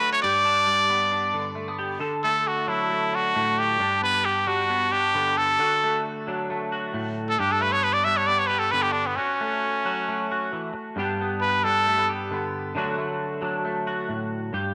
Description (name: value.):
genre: highlife.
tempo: 134 BPM.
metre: 4/4.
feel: swing 53% on 16ths.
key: D major.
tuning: A4 = 440 Hz.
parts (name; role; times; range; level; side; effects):
trumpet with straight mute; melody; 0.0-12.1 s; B3 to E5; -24 LUFS; equal; none.
clean electric guitar; accompaniment; 0.0-14.7 s; G2 to A4; -30 LUFS; equal; analog chorus.
room: moderate plate reverb, RT60 2.7 s.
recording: none.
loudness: -24 LUFS.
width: mono.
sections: 0.0-2.0 A section; 2.0-14.7 B section.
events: muted trumpet solo 2.0-14.7.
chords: 0.2 G; 2.0 D; 3.8 G; 5.6 D; 7.4 G; 9.2 D; 11.0 G; 12.8 D.